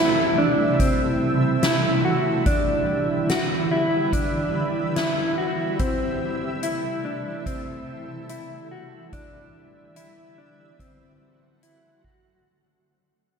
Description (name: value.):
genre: dream pop.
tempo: 72 BPM.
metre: 4/4.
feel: straight.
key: A dorian.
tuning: A4 = 440 Hz.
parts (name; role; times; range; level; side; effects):
shimmering ambient pad; sustained chords; 0.0-12.4 s; C3 to F#4; -25 LUFS; right 1 dB; chorus, built-in reverb.
mellow electric guitar; arpeggios; 0.0-12.5 s; C4 to F#4; -24 LUFS; equal; wide subtle chorus, digital delay, slapback echo.
soft-mallet drum kit; drums; 0.8-12.2 s; hi-hat, kick drum, snare drum; -27 LUFS; equal; none.
room: wet concert hall reverb, RT60 2.1 s.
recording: big arena sound.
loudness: -20 LUFS.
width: side -6 dB against mid.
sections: 0.0-12.5 A section.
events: fade-out 0.0-12.5.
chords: 0.0 Am7; 2.5 Em7; 5.8 Am7; 9.1 Em7; 10.8 D7.